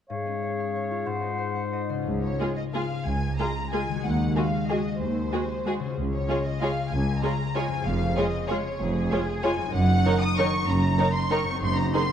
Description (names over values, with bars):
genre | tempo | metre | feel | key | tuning
classical | 170-209 BPM | 3/4 | rubato | Db major | A4 = 436 Hz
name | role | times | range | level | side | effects
clear oboe | second line | 0.1-1.9 s | C5 to Db5 | -35 LUFS | left 1 dB | none
concert flute | second line | 0.1-1.9 s | F5 to Gb5 | -34 LUFS | left 1 dB | none
mellow clarinet | second line | 0.1-1.9 s | Ab4 | -35 LUFS | left 6 dB | none
concert harp | arpeggios | 0.1-12.1 s | F2 to Gb5 | -31 LUFS | left 6 dB | none
rich symphonic double bass section | bass | 2.1-11.9 s | F1 to Eb2 | -29 LUFS | right 2 dB | none
warm studio cello section | bass | 2.1-11.9 s | Db2 to Gb2 | -29 LUFS | right 2 dB | none
warm symphonic violin section | melody | 2.2-12.1 s | Ab4 to Eb6 | -30 LUFS | left 2 dB | none
warm symphonic violin section | second line | 2.4-12.0 s | Ab4 to Db5 | -31 LUFS | equal | none
rich symphonic viola section | accompaniment | 2.4-12.0 s | Eb3 to Gb4 | -31 LUFS | right 1 dB | none
room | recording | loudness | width
wet scoring stage reverb, RT60 1.6 s | dark, warm production | -23 LUFS | side -9 dB against mid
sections
0.1-2.1 A section; 2.1-12.1 B section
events
none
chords
0.1 Db/Ab; 1.1 Ab7; 2.1 Db; 4.0 Ab7/Eb; 6.0 Db; 7.9 Db/F; 9.7 Ebm7/Gb; 11.6 Ab7/Gb